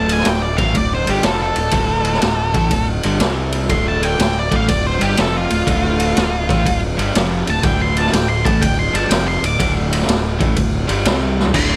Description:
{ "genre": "blues rock power trio and southern rock", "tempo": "122 BPM", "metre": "4/4", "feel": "swing 66% on 8ths", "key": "D minor", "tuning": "A4 = 440 Hz", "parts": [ { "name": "octave-fuzz lead guitar", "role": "melody", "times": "0.0-11.8 s", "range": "F4 to D6", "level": "-23 LUFS", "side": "equal", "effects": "distortion" }, { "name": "overdriven electric guitar", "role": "riff", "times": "0.0-11.8 s", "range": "D2 to C4", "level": "-24 LUFS", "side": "equal", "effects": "spring reverb" }, { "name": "fuzz fingered electric bass", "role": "bass", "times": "0.0-11.8 s", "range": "D1 to C2", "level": "-24 LUFS", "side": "equal", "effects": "overdrive" }, { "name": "raw garage drum kit", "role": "drums", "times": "0.1-11.7 s", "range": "crash cymbal, kick drum, ride cymbal, snare drum, toms", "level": "-21 LUFS", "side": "equal", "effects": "none" } ], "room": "light reverb", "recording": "none", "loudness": "-17 LUFS", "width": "mono", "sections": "0.0-11.5 A section", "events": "lead electric guitar solo 0.0-11.8; drum fill 11.3", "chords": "0.0 Dm; 3.2 C5; 3.7 Dm; 11.1 C5", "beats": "0.27 0.76 1.25 | 1.75 2.24 2.73 3.22 | 3.71 4.20 4.69 5.18 | 5.67 6.16 6.65 7.14 | 7.63 8.12 8.61 9.10 | 9.59 10.08 10.57 11.06 | 11.55" }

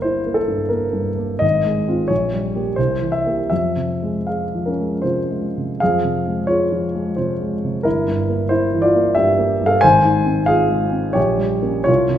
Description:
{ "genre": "classical, romantic character piece for solo piano", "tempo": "73-92 BPM", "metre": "3/4", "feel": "rubato", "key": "F minor", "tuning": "A4 = 443 Hz", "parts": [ { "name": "dark grand piano", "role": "solo", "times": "0.0-12.2 s", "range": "G1 to Ab5", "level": "-16 LUFS", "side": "equal", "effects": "none" } ], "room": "wet recital hall reverb, RT60 1.4 s", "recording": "none", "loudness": "-16 LUFS", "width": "side -10 dB against mid", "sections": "0.0-5.8 A section; 5.8-12.2 A section", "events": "none", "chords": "0.0 Edim/G; 1.4 Fm/Ab; 2.1 Gdim/Bb; 2.8 C7; 3.5 Fm; 7.9 Edim/G; 9.8 Fm/Ab; 11.2 Gdim/Bb", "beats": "0.06 0.72 | 1.43 2.10 2.78 | 3.50 4.28 5.03 | 5.80 6.48 7.17 | 7.85 8.52 9.17 | 9.83 10.48 11.16 | 11.88" }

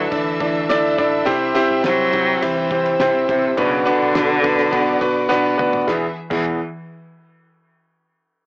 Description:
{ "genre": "piano-driven pop", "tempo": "104 BPM", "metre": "4/4", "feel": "straight", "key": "unclear", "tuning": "A4 = 443 Hz", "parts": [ { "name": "clear cello", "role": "melody", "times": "0.0-6.6 s", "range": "C3 to F#3", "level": "-22 LUFS", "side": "equal", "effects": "cassette tape" }, { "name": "warm concert grand piano", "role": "accompaniment", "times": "0.0-6.6 s", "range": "E2 to D5", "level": "-16 LUFS", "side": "equal", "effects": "cassette tape" }, { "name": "warm studio string section", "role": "sustained chords", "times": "0.0-6.1 s", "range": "B3 to E6", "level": "-28 LUFS", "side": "left 1 dB", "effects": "cassette tape, plate reverb" }, { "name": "vintage muted fingered electric bass", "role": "bass", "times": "0.0-6.6 s", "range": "E1 to D2", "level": "-38 LUFS", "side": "equal", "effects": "none" }, { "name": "damped 70s drum kit", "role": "drums", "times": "0.1-6.4 s", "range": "crash cymbal, kick drum, ride cymbal, snare drum, toms", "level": "-31 LUFS", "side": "equal", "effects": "none" } ], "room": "moderate booth ambience, RT60 0.2 s", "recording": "home recording on cassette, AM radio sound", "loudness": "-15 LUFS", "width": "side -30 dB against mid", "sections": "0.0-5.9 A section; 5.9-8.2 B section", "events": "drum fill 5.3-5.9", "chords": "0.0 Dsus2; 1.3 C; 3.6 Bm; 5.9 E", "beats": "0.12 0.69 | 1.27 1.85 2.42 3.00 | 3.57 4.15 4.73 5.30 | 5.88 6.46" }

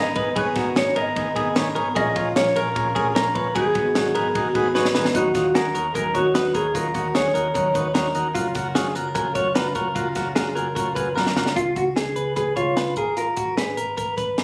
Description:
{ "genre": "jangly indie pop", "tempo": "150 BPM", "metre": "4/4", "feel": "straight", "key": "G# dorian", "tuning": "A4 = 440 Hz", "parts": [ { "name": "mellow electric guitar", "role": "melody", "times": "0.0-8.1, 11.6-14.4 s", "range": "E#4 to D#5", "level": "-26 LUFS", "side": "equal", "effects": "slapback echo, plate reverb" }, { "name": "combo organ", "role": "accompaniment", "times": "0.0-11.5 s", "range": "B3 to D#5", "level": "-30 LUFS", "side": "equal", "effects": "none" }, { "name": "picked steel-string acoustic guitar", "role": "accompaniment", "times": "0.0-11.6 s", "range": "G#2 to A#4", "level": "-34 LUFS", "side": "equal", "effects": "none" }, { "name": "direct-recorded clean electric guitar", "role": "arpeggios", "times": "0.0-14.4 s", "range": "D#4 to C#5", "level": "-28 LUFS", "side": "equal", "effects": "slapback echo, plate reverb" }, { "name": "vintage muted picked electric bass", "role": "bass", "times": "0.0-14.4 s", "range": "F#1 to D#2", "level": "-35 LUFS", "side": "equal", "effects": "none" }, { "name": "compact cocktail drum kit", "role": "drums", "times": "0.2-14.4 s", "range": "hi-hat, kick drum, ride cymbal, snare drum", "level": "-28 LUFS", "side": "equal", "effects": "none" } ], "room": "moderate large studio reverb, RT60 0.8 s, small room ambience", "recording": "recorded on a phone in the room, club reverb", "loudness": "-22 LUFS", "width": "mono", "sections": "0.0-5.2 A section; 5.2-11.6 B section; 11.6-14.4 C section", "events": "drum fill 4.8-5.2, 11.2-11.6", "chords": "0.0 G#madd9; 2.0 A#m7; 3.6 G#m7; 5.2 D#m7; 8.4 F#maj7; 11.6 C#7; 13.0 G#madd9", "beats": "| 0.36 0.76 1.16 1.56 | 1.96 2.36 2.76 3.16 | 3.56 3.96 4.35 4.75 | 5.15 5.55 5.95 6.35 | 6.75 7.15 7.55 7.95 | 8.35 8.75 9.15 9.55 | 9.96 10.36 10.76 11.16 | 11.56 11.97 12.37 12.77 | 13.18 13.58 13.98 14.39" }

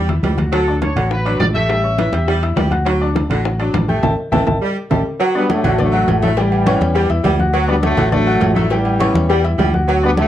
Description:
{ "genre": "latin, salsa", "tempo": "205 BPM", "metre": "4/4", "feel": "straight", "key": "D major", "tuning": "A4 = 440 Hz", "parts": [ { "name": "clear saxophone section", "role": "second line", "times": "0.0-10.1 s", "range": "D3 to A3", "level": "-22 LUFS", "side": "right 1 dB", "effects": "slapback echo" }, { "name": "bright baby grand piano", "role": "accompaniment", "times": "0.0-10.3 s", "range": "G3 to G6", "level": "-21 LUFS", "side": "left 3 dB", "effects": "none" }, { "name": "fingered electric bass", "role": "bass", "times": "0.0-10.3 s", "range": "A1 to E2", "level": "-19 LUFS", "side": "equal", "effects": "none" }, { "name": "bongos and cowbell", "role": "percussion", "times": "0.1-10.3 s", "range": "none", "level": "-26 LUFS", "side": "left 4 dB", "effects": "none" }, { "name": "congas", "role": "percussion", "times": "0.1-10.3 s", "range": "none", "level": "-22 LUFS", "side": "equal", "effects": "none" }, { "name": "timbales and agogo bells", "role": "percussion", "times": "0.1-10.3 s", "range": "none", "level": "-24 LUFS", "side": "right 4 dB", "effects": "none" }, { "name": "clear trumpet section", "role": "melody", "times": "0.5-2.4 s", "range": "A4 to E5", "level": "-20 LUFS", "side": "equal", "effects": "plate reverb" }, { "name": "brilliant trombone section", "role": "melody", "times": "5.4-10.3 s", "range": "D3 to B3", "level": "-18 LUFS", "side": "left 1 dB", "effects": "plate reverb" } ], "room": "wet small room reverb, RT60 0.5 s", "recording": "worn, warbling old tape, cassette tape, warbly pitch drift", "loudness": "-14 LUFS", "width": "side -12 dB against mid", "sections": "0.0-5.2 A section; 5.2-10.3 B section", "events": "drum fill 0.0-0.5, 4.5-5.2; band accent 4.0-5.2", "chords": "0.0 A7(no3) (rootless); 0.5 D; 1.7 A7; 2.9 D; 4.0 A5; 5.2 D; 6.4 A7; 7.5 D; 8.7 A7", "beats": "0.23 | 0.52 0.82 1.11 1.40 | 1.69 1.99 2.28 2.57 | 2.86 3.15 3.45 3.74 | 4.03 4.32 4.62 4.91 | 5.20 5.49 5.79 6.08 | 6.37 6.66 6.96 7.25 | 7.54 7.83 8.12 8.42 | 8.71 9.00 9.29 9.59 | 9.88 10.17" }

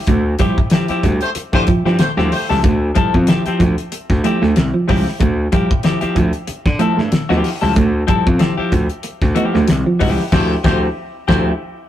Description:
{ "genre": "funk", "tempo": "94 BPM", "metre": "4/4", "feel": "swing 56% on 16ths", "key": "D minor", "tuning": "A4 = 441 Hz", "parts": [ { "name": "semi-hollow electric guitar", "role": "riff", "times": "0.1-10.1 s", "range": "F3 to A3", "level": "-19 LUFS", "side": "right 3 dB", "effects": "none" }, { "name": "gritty slap bass", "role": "bass", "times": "0.1-11.5 s", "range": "C2 to D3", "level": "-18 LUFS", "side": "equal", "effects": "overdrive" }, { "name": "damped 70s drum kit", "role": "drums", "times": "0.1-11.5 s", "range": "crash cymbal, hi-hat, kick drum, snare drum", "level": "-17 LUFS", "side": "equal", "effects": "none" }, { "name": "clean electric guitar", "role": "accompaniment", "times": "0.4-11.5 s", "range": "F3 to A4", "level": "-20 LUFS", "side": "left 2 dB", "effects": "spring reverb" }, { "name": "warm horn section", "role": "second line", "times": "1.2-2.5, 10.3-11.5 s", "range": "A3 to C5", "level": "-22 LUFS", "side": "left 2 dB", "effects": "none" } ], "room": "wet small room reverb, RT60 0.5 s", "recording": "rough rehearsal-room recording, tube saturation", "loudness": "-13 LUFS", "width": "side -12 dB against mid", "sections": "0.0-11.9 A section", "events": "band accent 0.1-2.6, 10.3-11.9", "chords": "0.0 Dm11", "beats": "| 0.08 0.72 1.36 2.00 | 2.64 3.28 3.92 4.56 | 5.20 5.84 6.48 7.12 | 7.76 8.40 9.04 9.68 | 10.32 10.96" }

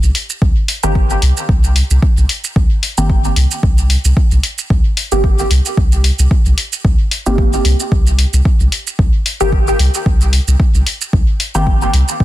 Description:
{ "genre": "dub techno", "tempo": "112 BPM", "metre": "4/4", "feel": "swing 56% on 16ths", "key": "C minor", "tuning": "A4 = 439 Hz", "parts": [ { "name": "filtered dub chord stab", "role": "stabs", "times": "0.0-12.2 s", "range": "Eb3 to G4", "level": "-19 LUFS", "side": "equal", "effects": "phaser, sidechain pumping, dub echo" }, { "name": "soft dub sub bass", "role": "bass", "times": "0.0-12.2 s", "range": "G1 to C2", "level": "-13 LUFS", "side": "equal", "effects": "sidechain pumping" }, { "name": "electronic shaker and hi-hat", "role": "drums", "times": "0.0-12.2 s", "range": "none", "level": "-20 LUFS", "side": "equal", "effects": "overdrive" }, { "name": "electronic kick drum", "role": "drums", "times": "0.4-12.2 s", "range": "none", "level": "-13 LUFS", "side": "equal", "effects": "overdrive" } ], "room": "digital ambience", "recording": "dense, heavily limited modern master", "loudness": "-11 LUFS", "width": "side -15 dB against mid", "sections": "0.0-12.2 A section", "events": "none", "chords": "0.0 Cm7", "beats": "| 0.42 0.95 1.49 2.02 | 2.56 3.10 3.63 4.17 | 4.70 5.24 5.78 6.31 | 6.85 7.38 7.92 8.45 | 8.99 9.53 10.06 10.60 | 11.13 11.67 12.20" }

